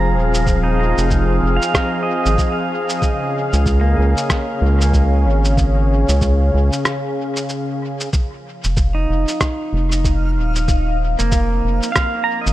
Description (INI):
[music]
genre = ambient dub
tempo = 94 BPM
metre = 4/4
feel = swing 60% on 16ths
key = F minor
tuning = A4 = 440 Hz
[part]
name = warm analog pad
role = sustained chords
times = 0.0-12.5 s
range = Db3 to F5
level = -22 LUFS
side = left 1 dB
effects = lush chorus
[part]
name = pedal steel guitar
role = arpeggios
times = 0.0-12.5 s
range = Bb3 to Bb5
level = -24 LUFS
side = right 2 dB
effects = tape echo
[part]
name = round analog bass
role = bass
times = 0.0-12.5 s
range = Eb1 to Db2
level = -16 LUFS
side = equal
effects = none
[part]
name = electronic cabasa and rim click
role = drums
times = 0.3-12.5 s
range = none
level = -23 LUFS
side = equal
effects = studio reverb, dub echo
[part]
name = electronic kick drum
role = drums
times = 0.5-12.1 s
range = none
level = -18 LUFS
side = equal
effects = studio reverb
[part]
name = backwards swelling texture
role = texture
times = 8.8-12.5 s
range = F5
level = -28 LUFS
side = left 2 dB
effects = built-in reverb
[sound]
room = light reverb, digital ambience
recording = none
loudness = -15 LUFS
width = side -15 dB against mid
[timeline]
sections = 0.0-8.1 A section; 8.1-12.5 A section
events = break 6.9-8.1; fade-in on analog synth pad 8.1-12.5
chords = 0.0 Fm; 3.0 Db; 8.1 Fm